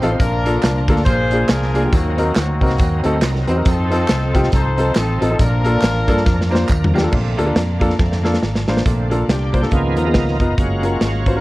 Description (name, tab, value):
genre	uptempo gospel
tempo	139 BPM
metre	4/4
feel	swing 59% on 8ths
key	Bb major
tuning	A4 = 440 Hz
part	clear upright piano	accompaniment	0.0-11.4 s	Bb2 to F5	-21 LUFS	left 1 dB	none
part	bright tonewheel organ	sustained chords	0.0-11.4 s	D3 to C5	-25 LUFS	right 1 dB	slow rotary speaker, overdrive, chorus vibrato
part	fingered electric bass	bass	0.0-11.4 s	F1 to G2	-20 LUFS	equal	none
part	modern studio drum kit	drums	0.0-11.3 s	crash cymbal, hi-hat, kick drum, snare drum, toms	-19 LUFS	equal	none
part	tambourine and handclaps	percussion	0.0-7.0 s	none	-33 LUFS	right 4 dB	none
part	warm horn section	melody	0.2-6.7 s	Bb3 to C5	-22 LUFS	left 2 dB	tape echo
part	rich studio string section	sustained chords	7.1-11.4 s	Db5 to Db6	-34 LUFS	left 1 dB	none
room	light reverb, small room ambience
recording	worn, warbling old tape, cassette tape, warbly pitch drift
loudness	-14 LUFS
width	side -19 dB against mid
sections	0.0-7.1 A section; 7.1-8.9 B section; 8.9-11.4 C section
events	upright piano fill 0.0; drum fill 6.3-7.1, 8.0-8.9; tonewheel organ solo 8.9-11.4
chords	0.2 Bbmaj7; 1.1 Bb7; 1.9 Ebm6; 3.7 F7; 5.4 Bbmaj7; 9.7 Db13; 10.6 Gbmaj7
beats	| 0.20 0.63 1.06 1.50 | 1.93 2.36 2.80 3.23 | 3.66 4.10 4.53 4.96 | 5.39 5.83 6.26 6.69 | 7.13 7.56 7.99 8.42 | 8.86 9.29 9.72 10.15 | 10.58 11.02